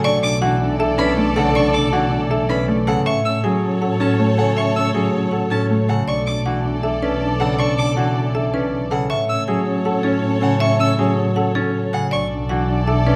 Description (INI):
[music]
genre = classical, minimalist pattern music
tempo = 159 BPM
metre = 4/4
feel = straight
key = B dorian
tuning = A4 = 440 Hz
[part]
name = marimba with hard mallets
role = melody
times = 0.0-13.2 s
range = A4 to G#5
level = -26 LUFS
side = equal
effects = none
[part]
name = mellow French horn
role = second line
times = 0.0-13.2 s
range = C#4 to D4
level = -28 LUFS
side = equal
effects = none
[part]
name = Celtic harp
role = accompaniment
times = 0.0-13.2 s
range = C#3 to A3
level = -25 LUFS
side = equal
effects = none
[part]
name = warm symphonic violin section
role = sustained chords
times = 0.0-13.2 s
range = A4 to D5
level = -29 LUFS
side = equal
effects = none
[part]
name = bright concert grand piano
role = arpeggios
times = 0.0-13.2 s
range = C#4 to A4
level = -28 LUFS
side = equal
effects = none
[part]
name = warm violin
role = arpeggios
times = 0.0-12.3 s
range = F#5 to E6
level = -29 LUFS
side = equal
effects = none
[part]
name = warm symphonic double bass section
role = bass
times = 0.0-13.2 s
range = B1 to A2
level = -25 LUFS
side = equal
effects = none
[sound]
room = wet scoring stage reverb, RT60 1.5 s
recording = none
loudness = -19 LUFS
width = mono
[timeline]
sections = 0.0-13.2 A section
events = none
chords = 0.0 Bm9; 3.1 A6; 6.1 Bm9; 9.1 A6; 12.1 Bm9